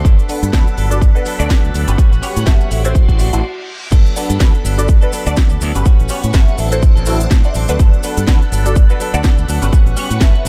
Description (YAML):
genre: filtered disco house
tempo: 124 BPM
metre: 4/4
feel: swing 56% on 16ths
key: G major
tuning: A4 = 440 Hz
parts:
  - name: phased string machine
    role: sustained chords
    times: 0.0-10.5 s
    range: G3 to D6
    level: -30 LUFS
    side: equal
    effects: ensemble chorus, phaser, sidechain pumping, low-pass filter
  - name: direct-recorded clean electric guitar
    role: riff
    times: 0.0-10.5 s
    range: F#3 to A4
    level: -28 LUFS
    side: equal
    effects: sidechain pumping, low-pass filter
  - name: electronic kick drum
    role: drums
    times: 0.0-10.3 s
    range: none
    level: -13 LUFS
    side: equal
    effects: small room ambience
  - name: modern bright fingered electric bass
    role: bass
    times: 0.1-10.5 s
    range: G1 to A2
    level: -19 LUFS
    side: equal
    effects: sidechain pumping, low-pass filter
  - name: house drum kit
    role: drums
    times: 0.1-10.5 s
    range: cabasa, crash cymbal, hi-hat, snare drum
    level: -27 LUFS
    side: equal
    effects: sidechain pumping on hats, small room ambience, sidechain pumping on perc, sidechain pumping on cymbals
  - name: maracas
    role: percussion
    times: 0.1-10.5 s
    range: none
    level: -32 LUFS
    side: equal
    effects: sidechain pumping on perc, low-pass filter on perc
  - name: funky polysynth comp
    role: accompaniment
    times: 0.3-10.5 s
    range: C#4 to E5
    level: -25 LUFS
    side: equal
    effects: chorus, phaser, vintage 12-bit sampler grit, sidechain pumping, low-pass filter
  - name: reverse cymbal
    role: sound effects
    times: 3.2-3.9 s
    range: none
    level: -34 LUFS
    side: equal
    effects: none
room: digital ambience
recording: none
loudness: -13 LUFS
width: mono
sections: 0.0-3.9 A section; 3.9-10.5 B section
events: reverse cymbal 3.2-3.9; stop 3.4-3.9; drop 3.9-10.5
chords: 0.0 Gmaj9; 2.0 A13; 2.7 D7/A; 3.9 Gmaj9; 5.9 A13; 6.6 D7/A; 7.8 Gmaj9; 9.7 A13